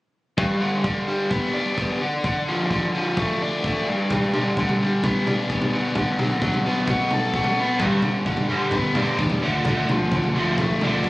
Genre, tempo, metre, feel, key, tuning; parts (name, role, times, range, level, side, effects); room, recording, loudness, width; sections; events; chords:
indie rock; 130 BPM; 4/4; straight; G major; A4 = 444 Hz
biting overdriven guitar; riff; 0.4-11.1 s; G2 to A4; -21 LUFS; left 1 dB
compact cocktail drum kit; drums; 0.4-11.1 s; kick drum, toms; -27 LUFS; equal
overdriven electric guitar; riff; 7.8-11.1 s; G2 to A3; -26 LUFS; right 2 dB; ensemble chorus, slapback echo
fingered electric bass; bass; 7.8-11.1 s; F1 to E2; -27 LUFS; equal
light reverb; recorded on a phone in the room, club reverb, compression; -20 LUFS; side -18 dB against mid
0.4-11.1 A section
0.4 G; 2.0 Dm; 3.9 G; 5.7 D6; 7.8 G; 9.4 Dm